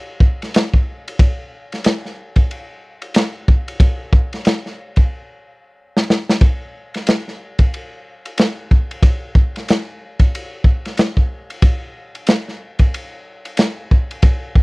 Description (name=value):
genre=hip hop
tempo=92 BPM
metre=4/4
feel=swing 60% on 16ths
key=none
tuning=none
part: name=crunchy breakbeat drum kit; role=drums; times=0.2-14.6 s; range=hi-hat, kick drum, ride cymbal, snare drum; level=-14 LUFS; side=equal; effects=none
room=little or no reverb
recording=dry, close 1970s-style studio recording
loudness=-15 LUFS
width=side -25 dB against mid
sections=0.0-6.4 A section; 6.4-14.6 A section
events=drum fill 5.1-6.4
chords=none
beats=0.54 | 1.19 1.84 2.50 3.15 | 3.80 4.45 5.11 5.76 | 6.41 7.06 7.71 8.37 | 9.02 9.67 10.32 10.97 | 11.63 12.28 12.93 13.58 | 14.23